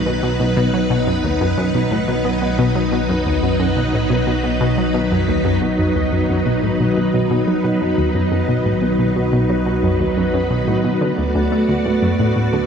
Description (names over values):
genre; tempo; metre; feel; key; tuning
ambient, sequencer-driven space music; 89 BPM; 4/4; straight; unclear; A4 = 441 Hz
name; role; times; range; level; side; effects
string machine, full ensemble; sustained chords; 0.0-12.7 s; F#3 to D5; -18 LUFS; equal; ensemble chorus
fat analog bass; bass; 0.0-12.7 s; B1 to D2; -29 LUFS; equal; none
bubbling stepped-filter texture; texture; 0.0-12.7 s; B3 to B4; -29 LUFS; right 3 dB; chorus, built-in reverb
analog pluck; riff; 0.1-12.7 s; D2 to A3; -19 LUFS; equal; chorus, ping-pong delay
room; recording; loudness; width
moderate plate reverb, RT60 2.9 s; dark, warm production; -15 LUFS; side -7 dB against mid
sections
0.0-12.7 A section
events
none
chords
0.0 B; 11.0 D